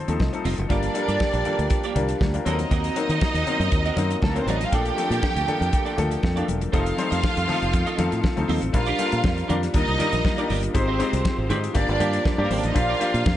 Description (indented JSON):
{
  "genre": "disco",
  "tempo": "120 BPM",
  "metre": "4/4",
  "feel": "straight",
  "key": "Bb major",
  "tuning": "A4 = 442 Hz",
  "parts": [
    { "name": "clear grand piano", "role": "accompaniment", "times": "0.0-13.4 s", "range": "F3 to Eb5", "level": "-27 LUFS", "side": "left 5 dB", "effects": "none" },
    { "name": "clean electric guitar", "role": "accompaniment", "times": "0.1-13.2 s", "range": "Bb3 to Eb5", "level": "-33 LUFS", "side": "right 8 dB", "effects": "ensemble chorus" },
    { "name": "fingered electric bass", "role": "bass", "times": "0.1-13.4 s", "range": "E1 to Eb3", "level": "-25 LUFS", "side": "equal", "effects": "none" },
    { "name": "damped 70s drum kit", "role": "drums", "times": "0.1-13.4 s", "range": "hi-hat, kick drum, snare drum", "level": "-25 LUFS", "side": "equal", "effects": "none" },
    { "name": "congas", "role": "percussion", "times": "0.2-13.4 s", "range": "none", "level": "-34 LUFS", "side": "left 3 dB", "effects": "none" },
    { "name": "rich studio string section", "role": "second line", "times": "0.7-13.4 s", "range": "A3 to G5", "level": "-27 LUFS", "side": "right 2 dB", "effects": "slapback echo" },
    { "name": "mellow French horn section", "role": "sustained chords", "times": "0.7-13.4 s", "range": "Bb2 to A4", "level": "-33 LUFS", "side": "right 3 dB", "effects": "none" }
  ],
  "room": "light reverb, small room ambience",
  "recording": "nothing above 10.7 kHz",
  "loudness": "-20 LUFS",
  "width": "side -12 dB against mid",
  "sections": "0.7-8.7 A section; 8.7-13.4 B section",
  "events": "grand piano fill 0.0-0.7",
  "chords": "0.0 F7; 0.7 Gm7; 2.5 Ebm6; 4.7 Bbmaj7; 6.7 F7; 8.7 Bb6; 9.7 Ebmaj7; 10.7 Abmaj7; 11.8 Gm7; 12.8 Bb6"
}